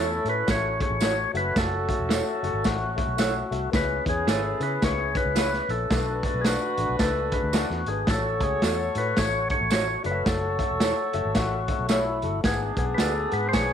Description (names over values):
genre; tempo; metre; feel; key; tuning
uptempo 1960s-style soul; 110 BPM; 4/4; swing 61% on 8ths; unclear; A4 = 440 Hz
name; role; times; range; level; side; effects
percussive tonewheel organ; melody; 0.0-13.7 s; E4 to C#5; -28 LUFS; left 1 dB; slow rotary speaker
mellow horn section; second line; 0.0-13.7 s; A3 to C#5; -32 LUFS; left 1 dB; none
warm upright piano; accompaniment; 0.0-13.7 s; G#2 to G#5; -32 LUFS; left 11 dB; none
electric guitar through a small old amp; stabs; 0.0-13.1 s; E4 to D5; -32 LUFS; right 9 dB; none
vintage muted fingered electric bass; bass; 0.0-13.7 s; E1 to C#3; -31 LUFS; right 1 dB; none
crunchy breakbeat drum kit; drums; 0.3-13.7 s; hi-hat, kick drum, snare drum; -27 LUFS; right 1 dB; none
tambourine; percussion; 0.5-13.7 s; none; -38 LUFS; right 16 dB; none
room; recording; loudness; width
moderate spring reverb, RT60 1.5 s; 1960s-style stereo with parts hard left and right; -22 LUFS; side -8 dB against mid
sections
0.0-13.7 A section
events
none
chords
0.0 A6; 1.3 F#m7; 3.7 C#m7; 5.9 Bm7; 8.1 A6; 10.0 F#m7; 12.4 G#m7b5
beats
0.47 1.01 | 1.56 2.10 2.64 3.19 | 3.73 4.27 4.82 5.36 | 5.91 6.45 7.00 7.54 | 8.08 8.63 9.17 9.72 | 10.26 10.81 11.35 11.90 | 12.45 12.99 13.54